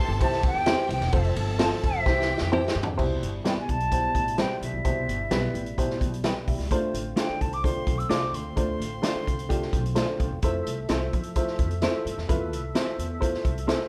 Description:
uptempo 1960s-style soul; 129 BPM; 4/4; straight; C major; A4 = 440 Hz
silver concert flute; melody; 0.0-10.2 s; E5 to E6; -32 LUFS; equal
rich studio violin section; second line; 0.0-3.0 s; G4 to A5; -38 LUFS; equal
warm upright piano; accompaniment; 0.0-13.9 s; B2 to G5; -33 LUFS; equal
percussive tonewheel organ; sustained chords; 0.0-13.9 s; B2 to E5; -40 LUFS; equal; slow rotary speaker, overdrive
upright bass; bass; 0.1-13.7 s; E1 to F3; -33 LUFS; equal
swinging big-band drum kit; drums; 0.2-13.8 s; crash cymbal, hi-hat, kick drum, ride cymbal, snare drum, toms; -31 LUFS; equal
clean electric guitar; stabs; 0.7-13.8 s; G3 to C5; -32 LUFS; equal
light reverb; band playing live in one room; -26 LUFS; mono
0.0-3.0 A section; 3.0-13.9 B section
drum fill 2.1-3.0
0.0 C; 1.1 F; 2.1 C; 3.0 Cmaj7; 6.7 Dm7; 10.4 Fmaj7

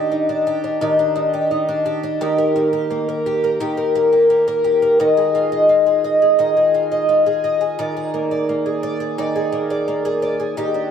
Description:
dream pop; 86 BPM; 4/4; straight; Eb major; A4 = 440 Hz
picked twelve-string acoustic guitar; solo; 0.0-10.9 s; Eb3 to Eb5; -16 LUFS; equal; wide subtle chorus, analog delay
wet plate reverb, RT60 2.9 s; dreamy mix soaked in reverb; -15 LUFS; side -8 dB against mid
0.0-10.9 A section
0.0 Ebmaj7; 2.2 Eb; 5.0 Fm7/Eb; 7.8 Bb7/Eb

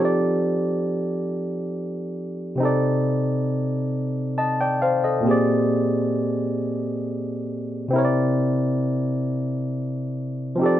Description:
R&B; 45 BPM (dotted quarters); 6/8; straight; C dorian; A4 = 437 Hz
barky tine electric piano; solo; 0.0-10.8 s; Bb2 to A5; -21 LUFS; equal
moderate stone room reverb, RT60 1.1 s; band playing live in one room; -21 LUFS; side -12 dB against mid
0.0-10.8 A section
0.0 F13; 2.6 Cm69; 5.3 Bb13; 7.9 C9

